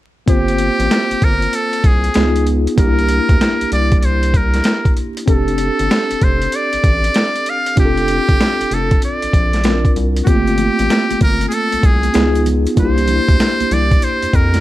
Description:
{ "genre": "hip hop, jazz-hop", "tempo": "96 BPM", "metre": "4/4", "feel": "swing 65% on 16ths", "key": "G dorian", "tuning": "A4 = 440 Hz", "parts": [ { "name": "trumpet with metal mute", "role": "melody", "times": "0.3-14.6 s", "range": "F#4 to F5", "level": "-18 LUFS", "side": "equal", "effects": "plate reverb" }, { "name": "bright tine electric piano", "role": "accompaniment", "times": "0.3-14.6 s", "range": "A3 to C5", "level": "-19 LUFS", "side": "equal", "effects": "medium stereo tremolo, plate reverb" }, { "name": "round analog bass", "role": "bass", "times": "0.3-14.6 s", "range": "F1 to F2", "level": "-18 LUFS", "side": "equal", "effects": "none" }, { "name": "boom bap sampler-style drum kit", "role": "drums", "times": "0.3-14.6 s", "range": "hi-hat, kick drum, snare drum", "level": "-15 LUFS", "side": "equal", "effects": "none" }, { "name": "egg shaker and congas", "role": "percussion", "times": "10.3-14.6 s", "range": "none", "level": "-29 LUFS", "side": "right 8 dB", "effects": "none" } ], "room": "moderate studio reverb, RT60 0.6 s", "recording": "vinyl crackle", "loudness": "-12 LUFS", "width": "side -15 dB against mid", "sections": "0.3-14.6 A section", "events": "none", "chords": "0.3 Gm11; 2.1 C#9; 2.8 C9; 5.3 F69; 7.8 Bbmaj9/F; 10.3 Gm11; 12.1 C#9; 12.8 C9" }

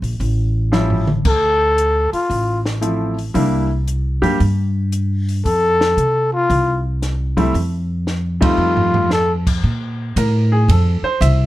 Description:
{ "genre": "jazz, small-group swing and bop", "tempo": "114 BPM", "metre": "4/4", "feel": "swing 68% on 8ths", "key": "F major", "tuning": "A4 = 440 Hz", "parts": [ { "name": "upright bass", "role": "bass", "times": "0.0-11.5 s", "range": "A1 to C3", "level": "-18 LUFS", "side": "equal", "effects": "none" }, { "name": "compact cocktail drum kit", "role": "drums", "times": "0.0-11.4 s", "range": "crash cymbal, hi-hat, kick drum, ride cymbal, snare drum, toms", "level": "-23 LUFS", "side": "right 1 dB", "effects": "none" }, { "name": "clear baby grand piano", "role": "accompaniment", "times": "0.7-11.5 s", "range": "F3 to E5", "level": "-19 LUFS", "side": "equal", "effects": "none" }, { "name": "breathy trumpet", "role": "melody", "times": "1.3-9.3 s", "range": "F4 to A4", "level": "-16 LUFS", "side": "left 1 dB", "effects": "none" } ], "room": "little or no reverb", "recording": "close, detailed microphones", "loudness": "-15 LUFS", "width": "side -15 dB against mid", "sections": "0.0-9.6 A section; 9.6-11.5 B section", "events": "drum fill 0.7-1.2, 8.1-9.1; band accent 8.3", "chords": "0.2 A7b13; 1.2 Dm7; 3.3 C9; 5.4 F; 8.6 F7; 9.6 Absus2; 10.7 Dm7 (rootless)" }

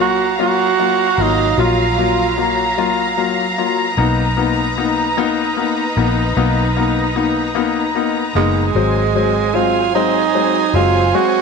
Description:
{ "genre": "six-eight pop ballad", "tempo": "50 BPM (dotted quarters)", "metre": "6/8", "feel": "straight", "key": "unclear", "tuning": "A4 = 442 Hz", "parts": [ { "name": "growling tenor saxophone", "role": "melody", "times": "0.0-2.5, 8.4-11.4 s", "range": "Ab3 to Gb4", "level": "-16 LUFS", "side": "right 10 dB", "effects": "none" }, { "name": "felt-muted upright piano", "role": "accompaniment", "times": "0.0-11.4 s", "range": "Gb3 to F4", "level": "-19 LUFS", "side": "left 10 dB", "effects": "none" }, { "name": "warm studio string section", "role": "sustained chords", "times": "0.0-11.4 s", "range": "Gb3 to Bb5", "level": "-20 LUFS", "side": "equal", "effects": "none" }, { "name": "vintage muted fingered electric bass", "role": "bass", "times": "0.0-11.1 s", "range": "Gb1 to Cb2", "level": "-20 LUFS", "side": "equal", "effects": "none" } ], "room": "wet echo chamber reverb, RT60 1.9 s, studio reverb", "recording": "1960s-style stereo with parts hard left and right", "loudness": "-14 LUFS", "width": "side -5 dB against mid", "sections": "0.0-11.4 A section", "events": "none", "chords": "0.0 Gbmaj7; 4.0 Cbmaj7; 8.8 Ab7" }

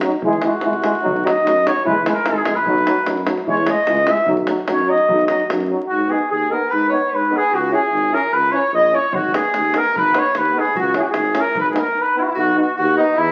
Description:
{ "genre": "balkan folk, Balkan brass band", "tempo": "148 BPM", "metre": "2/4", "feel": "straight", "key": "B major, G# minor from 5.9 s", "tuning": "A4 = 440 Hz", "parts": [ { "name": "clear euphonium", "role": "accompaniment", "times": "0.0-13.1 s", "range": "F#3 to C#4", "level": "-27 LUFS", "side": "equal", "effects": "none" }, { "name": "mellow tuba", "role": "bass", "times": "0.0-13.3 s", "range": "G#1 to G#2", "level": "-26 LUFS", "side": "equal", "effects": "none" }, { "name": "davul", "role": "percussion", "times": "0.0-5.7, 9.1-11.9 s", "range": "none", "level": "-28 LUFS", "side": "equal", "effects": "none" }, { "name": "warm euphonium", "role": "accompaniment", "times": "0.1-13.1 s", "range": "D#4 to E4", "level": "-28 LUFS", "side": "equal", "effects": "none" }, { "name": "warm cornet", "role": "melody", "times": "0.2-13.3 s", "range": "D#4 to E5", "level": "-20 LUFS", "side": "equal", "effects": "none" }, { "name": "clear alto saxophone", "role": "second line", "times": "5.9-13.3 s", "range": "D#4 to D#5", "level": "-29 LUFS", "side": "equal", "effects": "none" } ], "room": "wet large studio reverb, RT60 1.1 s", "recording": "very old 78 rpm record, vinyl crackle", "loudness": "-18 LUFS", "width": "mono", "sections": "0.0-5.9 A section; 5.9-12.4 B section", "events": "cornet solo 0.0-5.9", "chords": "0.2 E; 1.1 B; 1.9 E; 2.7 B; 3.5 E; 4.3 B; 5.9 G#m; 7.5 C#m; 9.1 G#m; 10.8 C#m; 11.6 G#m; 12.4 B" }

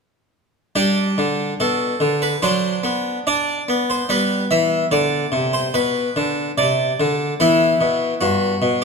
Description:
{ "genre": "classical, baroque-style suite movement for harpsichord", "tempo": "73 BPM", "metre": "4/4", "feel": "rubato", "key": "G major", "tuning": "A4 = 438 Hz", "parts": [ { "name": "harpsichord", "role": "solo", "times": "0.8-8.8 s", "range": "G2 to E5", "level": "-17 LUFS", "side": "equal", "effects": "none" } ], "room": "moderate recital hall reverb, RT60 1.8 s", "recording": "recorded in a church or concert hall", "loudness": "-17 LUFS", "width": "side -4 dB against mid", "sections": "0.8-8.8 A section", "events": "none", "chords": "0.8 G; 2.4 D7/F#; 4.1 G (rootless); 7.4 Em" }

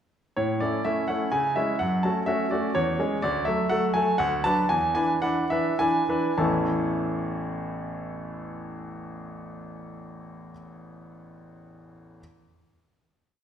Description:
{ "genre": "classical-period piano sonatina", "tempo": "98-129 BPM", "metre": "3/4", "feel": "rubato", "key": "A major", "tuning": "A4 = 440 Hz", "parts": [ { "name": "bright grand piano", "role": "solo", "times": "0.4-12.2 s", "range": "A1 to A5", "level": "-24 LUFS", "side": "equal", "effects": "none" } ], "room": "wet recital hall reverb, RT60 1.4 s", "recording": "heard from further back in the room", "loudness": "-23 LUFS", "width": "side -8 dB against mid", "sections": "0.4-6.4 theme; 6.4-10.0 final chord", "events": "slowing down 2.5-6.4", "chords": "0.4 A; 1.3 C#m; 1.8 F#m; 2.8 C#m/E; 3.2 D; 4.2 Bm/D; 4.7 E7; 6.4 A" }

